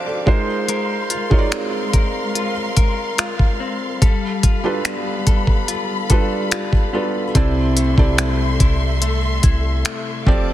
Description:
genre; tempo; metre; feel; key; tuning
contemporary R&B; 72 BPM; 4/4; straight; C major; A4 = 441 Hz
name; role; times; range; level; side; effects
felt-muted upright piano; accompaniment; 0.0-10.5 s; C3 to A5; -23 LUFS; right 2 dB; none
warm studio string section; sustained chords; 0.0-10.5 s; G3 to D6; -26 LUFS; left 1 dB; none
direct-recorded clean electric guitar; arpeggios; 0.0-10.5 s; C3 to Bb4; -26 LUFS; left 7 dB; none
smooth R&B drum kit; drums; 0.3-10.5 s; finger snaps, hi-hat, kick drum; -17 LUFS; equal; soft clipping on snare
clean 808-style bass; bass; 7.4-10.5 s; F1 to C2; -19 LUFS; equal; none
room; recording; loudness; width
little or no reverb; dense, heavily limited modern master; -16 LUFS; side -13 dB against mid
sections
0.0-10.5 A section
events
none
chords
0.3 Ab69; 4.0 G9; 7.4 C6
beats
| 0.69 1.52 2.35 3.19 | 4.02 4.85 5.68 6.52 | 7.35 8.19 9.02 9.85

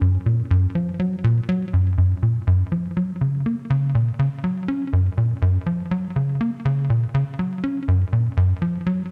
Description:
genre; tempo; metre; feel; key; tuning
ambient; 122 BPM; 4/4; straight; F# major; A4 = 441 Hz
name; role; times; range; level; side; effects
tight sequencer bass; solo; 0.0-9.0 s; F#2 to C#4; -21 LUFS; equal; delay
room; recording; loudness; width
moderate plate reverb, RT60 2.5 s; none; -22 LUFS; mono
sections
0.0-2.0 A section; 2.0-9.1 A section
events
none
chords
none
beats
| 0.01 0.51 1.00 1.49 | 1.98 2.47 2.97 3.46 | 3.95 4.44 4.93 5.42 | 5.92 6.41 6.90 7.39 | 7.88 8.38 8.87

